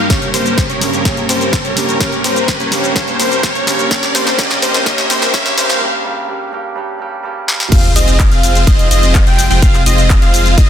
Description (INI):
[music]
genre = EDM, festival progressive house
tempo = 126 BPM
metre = 4/4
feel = straight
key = F minor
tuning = A4 = 436 Hz
[part]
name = dark concert grand piano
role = accompaniment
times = 0.0-7.7 s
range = G2 to G4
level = -22 LUFS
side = right 4 dB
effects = vintage 12-bit sampler grit, sidechain pumping, ping-pong delay
[part]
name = rich studio string section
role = sustained chords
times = 0.0-10.7 s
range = C3 to Bb4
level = -24 LUFS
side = left 1 dB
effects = sidechain pumping, low-pass filter
[part]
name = wide unison lead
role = arpeggios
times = 0.0-10.7 s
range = C5 to G5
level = -20 LUFS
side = left 1 dB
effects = sidechain pumping, ping-pong delay
[part]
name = supersaw chords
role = riff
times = 0.0-10.7 s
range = Bb3 to G5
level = -18 LUFS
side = equal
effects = sidechain pumping, low-pass filter, ping-pong delay
[part]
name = riser and sub drop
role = sound effects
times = 0.2-9.6 s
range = none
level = -23 LUFS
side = equal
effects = none
[part]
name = big-room dance drum kit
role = drums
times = 0.1-10.7 s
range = crash cymbal, handclaps, hi-hat, shaker, snare drum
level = -17 LUFS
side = left 1 dB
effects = high-pass filter on snare, high-pass filter on hats, high-pass filter on perc, high-pass filter on cymbals
[part]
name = electronic kick drum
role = drums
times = 0.1-10.7 s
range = none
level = -13 LUFS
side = equal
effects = none
[part]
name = saturated sub bass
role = bass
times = 7.7-10.7 s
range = F1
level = -15 LUFS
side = equal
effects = tube saturation, sidechain pumping
[sound]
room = moderate recital hall reverb, RT60 1.5 s, digital ambience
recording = dense, heavily limited modern master, high-pass filter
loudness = -11 LUFS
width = side -9 dB against mid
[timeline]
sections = 0.0-7.7 A section; 7.7-10.7 B section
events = build-up 0.0-7.7; drum fill 0.0-5.8, 7.5; riser 0.2-5.8; break 5.8-7.7; drop 7.7-10.7; impact 7.7-9.6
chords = 0.1 Gdim; 3.9 Bbm; 7.7 Fm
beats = | 0.10 0.58 1.05 1.53 | 2.00 2.48 2.96 3.43 | 3.91 4.39 4.86 5.34 | 5.82 6.29 6.77 7.24 | 7.72 8.20 8.67 9.15 | 9.62 10.10 10.58